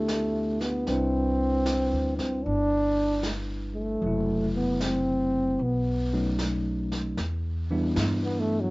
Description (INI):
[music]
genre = jazz ballad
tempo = 76 BPM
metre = 4/4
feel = swing 66% on 8ths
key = C major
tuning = A4 = 440 Hz
[part]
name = breathy trombone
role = melody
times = 0.0-8.7 s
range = F#3 to D4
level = -26 LUFS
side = equal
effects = cassette tape
[part]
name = tine electric piano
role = accompaniment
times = 0.0-8.7 s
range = C3 to B4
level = -30 LUFS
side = equal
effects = medium stereo tremolo
[part]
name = upright bass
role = bass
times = 0.0-8.7 s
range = F#1 to G2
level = -31 LUFS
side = equal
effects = none
[part]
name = jazz brush drum kit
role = drums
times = 0.1-8.7 s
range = brushed snare drum, hi-hat, snare drum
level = -36 LUFS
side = equal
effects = cassette tape
[sound]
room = moderate small room reverb, RT60 0.5 s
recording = home recording on cassette, nothing above 7.6 kHz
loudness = -24 LUFS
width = side -23 dB against mid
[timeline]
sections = 0.0-7.2 A section; 7.2-8.7 B section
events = trombone solo 7.2-8.7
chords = 0.0 G9; 0.9 Cmaj9; 4.0 F#m7b5; 5.6 B7; 7.2 Em7